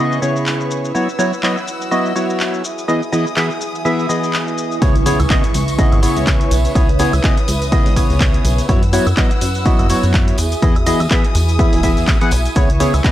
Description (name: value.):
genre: piano house.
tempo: 124 BPM.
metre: 4/4.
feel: swing 57% on 16ths.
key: C# minor.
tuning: A4 = 440 Hz.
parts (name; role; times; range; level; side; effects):
dark studio violin section; sustained chords; 0.0-13.1 s; E4 to E6; -26 LUFS; left 1 dB; sidechain pumping.
percussive organ stab; riff; 0.0-13.1 s; C#3 to F#5; -18 LUFS; equal; lush chorus, cassette tape, sidechain pumping, analog delay.
deep dark ambient pad; texture; 0.0-13.1 s; E4 to D#6; -27 LUFS; right 2 dB; chorus, built-in reverb, sidechain pumping.
punchy analog drum machine; drums; 0.1-13.1 s; handclaps, hi-hat, shaker, woodblock; -24 LUFS; equal; none.
plucky analog bass; bass; 4.8-13.0 s; E1 to F#2; -18 LUFS; equal; sidechain pumping.
electronic kick drum; drums; 4.8-13.1 s; none; -15 LUFS; equal; none.
tambourine; percussion; 4.8-13.1 s; none; -32 LUFS; right 3 dB; none.
impact; sound effects; 4.9-6.8 s; none; -26 LUFS; equal; none.
room: digital ambience.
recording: dry, gritty hardware recording.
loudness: -13 LUFS.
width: side -13 dB against mid.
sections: 0.0-4.8 A section; 4.8-13.1 B section.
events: drop 4.8-13.1; impact 4.8-6.8.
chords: 0.0 C#m7; 0.9 F#7sus4; 2.6 Emaj7; 4.8 C#m7; 8.7 F#7sus4; 10.4 Emaj7; 12.6 C#m7.